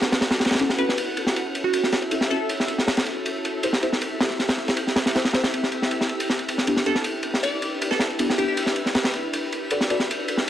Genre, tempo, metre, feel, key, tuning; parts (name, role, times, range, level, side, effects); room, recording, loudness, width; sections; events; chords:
drum and bass, jungle; 158 BPM; 4/4; straight; F# phrygian; A4 = 437 Hz
soft string machine; sustained chords; 0.0-10.5 s; B3 to B4; -30 LUFS; equal; ensemble chorus, vintage 12-bit sampler grit
crunchy breakbeat drum kit; drums; 0.0-10.5 s; ride cymbal, snare drum; -23 LUFS; equal; high-pass filter on cymbals, high-pass filter on snare, high-pass filter on room
backwards swelling texture; texture; 0.1-10.5 s; E5 to F#5; -36 LUFS; right 1 dB; built-in reverb
deep mellow chord stab; stabs; 0.6-10.0 s; B3 to D5; -28 LUFS; left 2 dB; chorus, dub echo
glassy wavetable pluck; melody; 0.8-2.7, 6.9-8.5 s; F#4 to D5; -29 LUFS; right 1 dB; chorus, dub echo
moderate plate reverb, RT60 1.3 s, small room ambience; dark, warm production, vinyl crackle; -21 LUFS; side -11 dB against mid
0.0-10.5 A section
filter sweep on synth stab 0.0-10.5
0.0 Bm7; 0.6 F#m7; 3.6 Am7; 6.7 Em7; 9.7 Bm7